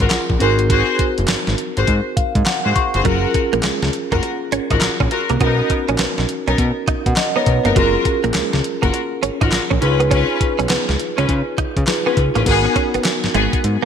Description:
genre	R&B, new jack swing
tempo	102 BPM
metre	4/4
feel	swing 63% on 16ths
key	F# major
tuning	A4 = 440 Hz
part	mellow tine electric piano	accompaniment	0.0-13.8 s	B3 to C#6	-21 LUFS	equal	medium stereo tremolo
part	rich studio string section	stabs	0.0-13.5 s	B3 to B#4	-22 LUFS	left 5 dB	none
part	fat analog bass	bass	0.0-13.8 s	F#1 to C#3	-20 LUFS	equal	none
part	clean 12-bit digital drum machine	drums	0.0-13.8 s	crash cymbal, handclaps, hi-hat, kick drum, snare drum	-20 LUFS	equal	gated reverb
part	direct-recorded clean electric guitar	riff	3.1-13.8 s	F#3 to D#4	-23 LUFS	right 6 dB	ensemble chorus
room	light reverb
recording	bright 1980s-style digital production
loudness	-15 LUFS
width	side -8 dB against mid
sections	0.0-12.5 A section; 12.5-13.8 B section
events	tine electric piano fill 1.9-3.1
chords	0.4 G#7; 3.1 F#maj7; 5.4 Bmaj7; 7.8 F#maj7; 9.8 C#7; 12.5 G#m7

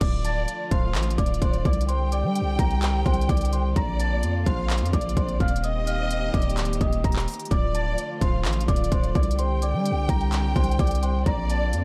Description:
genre	hip hop, trap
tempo	128 BPM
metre	4/4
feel	half-time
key	D phrygian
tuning	A4 = 442 Hz
part	large celesta	melody	0.0-11.8 s	C5 to Bb6	-33 LUFS	equal	none
part	rich studio violin section	second line	0.0-11.8 s	D5 to G5	-35 LUFS	equal	delay
part	warm studio string section	sustained chords	0.0-11.8 s	D3 to G4	-36 LUFS	equal	none
part	hard-hitting 808-style bass	bass	0.0-11.8 s	D1 to G3	-27 LUFS	equal	none
part	trap drum kit	drums	0.0-11.8 s	crash cymbal, handclaps, hi-hat, kick drum	-27 LUFS	equal	none
room	studio reverb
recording	dark, warm production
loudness	-24 LUFS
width	mono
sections	0.0-11.8 A section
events	none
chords	0.0 Dm; 1.9 Csus2; 3.8 Bbadd9; 5.6 Eb6; 7.5 Dm; 9.4 Csus2; 11.3 Bbadd9

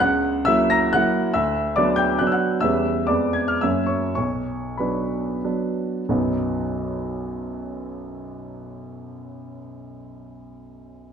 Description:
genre	classical, romantic triple-time dance for piano with dotted rhythms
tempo	89-149 BPM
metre	3/4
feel	rubato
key	unclear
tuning	A4 = 442 Hz
part	clear baby grand piano	solo	0.0-11.1 s	B1 to A#6	-21 LUFS	equal	none
room	moderate recital hall reverb, RT60 1.5 s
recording	dark, warm production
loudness	-20 LUFS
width	side -7 dB against mid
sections	0.0-6.1 A section; 6.1-9.7 B section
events	slowing down 2.0-6.1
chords	0.0 F#7/C#; 1.3 Bm/D; 2.6 C#m7b5/E; 3.1 Fdim7; 3.6 F#7; 4.2 Bm; 6.1 B

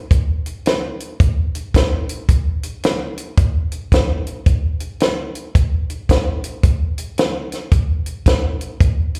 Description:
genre	blues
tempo	110 BPM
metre	4/4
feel	swing 63% on 8ths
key	none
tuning	none
part	compact cocktail drum kit	drums	0.1-9.2 s	hi-hat, kick drum, snare drum	-18 LUFS	equal	none
room	light reverb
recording	live gig heard through the venue's PA, club reverb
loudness	-19 LUFS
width	mono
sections	0.0-9.2 A section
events	none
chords	none

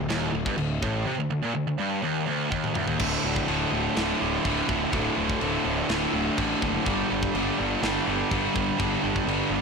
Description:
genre	heavy metal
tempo	124 BPM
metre	4/4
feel	straight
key	unclear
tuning	A4 = 438 Hz
part	sludgy distorted guitar	riff	0.0-9.6 s	D2 to G3	-29 LUFS	left 13 dB	overdrive
part	tight distorted guitar	riff	0.0-9.6 s	D2 to G3	-28 LUFS	right 12 dB	distortion
part	fuzz picked electric bass	bass	0.0-9.6 s	D1 to A1	-32 LUFS	left 1 dB	overdrive
part	tight metal drum kit	drums	0.1-9.4 s	china cymbal, crash cymbal, kick drum, snare drum, toms	-31 LUFS	left 1 dB	none
part	fuzz guitar	riff	3.0-9.6 s	D2 to G3	-30 LUFS	right 1 dB	distortion
room	little or no reverb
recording	blown-out, overdriven recording, overdrive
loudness	-23 LUFS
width	side -5 dB against mid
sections	0.0-3.0 A section; 3.0-9.6 B section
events	drum fill 2.5-3.0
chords	0.0 D5; 6.9 G5

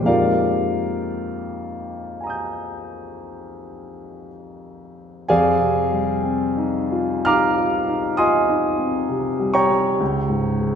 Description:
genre	classical, impressionist solo piano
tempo	54-67 BPM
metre	5/4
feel	rubato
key	F dorian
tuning	A4 = 440 Hz
part	warm concert grand piano	solo	0.0-10.8 s	Db2 to G6	-19 LUFS	equal	none
room	wet concert hall reverb, RT60 2.1 s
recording	heard from further back in the room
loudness	-18 LUFS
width	side -7 dB against mid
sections	0.0-5.3 A section; 5.3-10.8 B section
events	none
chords	0.1 Fm11; 5.3 Fm9; 10.0 Db5

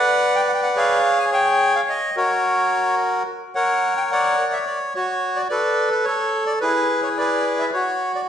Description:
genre	tango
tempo	108 BPM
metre	4/4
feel	rubato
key	unclear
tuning	A4 = 440 Hz
part	bandoneon	solo	0.0-8.3 s	E4 to G#5	-18 LUFS	equal	none
room	wet recital hall reverb, RT60 1.4 s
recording	recorded in a church or concert hall, nothing above 10.4 kHz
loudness	-18 LUFS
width	side -9 dB against mid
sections	0.0-8.3 A section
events	none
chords	0.0 Bm; 1.0 C#5; 2.1 F#; 4.4 Dmaj7; 5.5 Aadd9; 6.6 E; 7.7 F#5

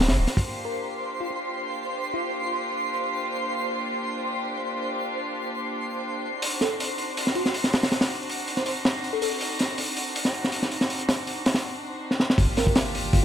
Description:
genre	drum and bass, jungle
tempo	161 BPM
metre	4/4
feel	straight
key	G minor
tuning	A4 = 439 Hz
part	warm chamber string section	sustained chords	0.0-13.2 s	Bb3 to G4	-32 LUFS	equal	vintage 12-bit sampler grit
part	soft dub sub bass	bass	0.0-0.3, 12.4-13.2 s	D1 to G1	-22 LUFS	equal	none
part	crunchy breakbeat drum kit	drums	0.0-0.5, 6.4-13.2 s	hi-hat, kick drum, snare drum	-24 LUFS	equal	none
part	twinkling granular texture	texture	0.0-11.6 s	C5 to C6	-32 LUFS	equal	built-in reverb
part	bell-like FM electric piano	melody	0.7-2.5, 6.6-9.3, 12.6-13.2 s	F4 to C5	-32 LUFS	equal	chorus, phaser, dub echo
part	impact	sound effects	12.4-13.2 s	none	-31 LUFS	equal	none
room	moderate digital room reverb, RT60 0.9 s, small room ambience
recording	none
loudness	-24 LUFS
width	side -9 dB against mid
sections	0.5-12.4 A section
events	drum fill 12.1; impact 12.4-13.2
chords	0.5 Gm7; 6.4 D7b9; 12.4 Gm7

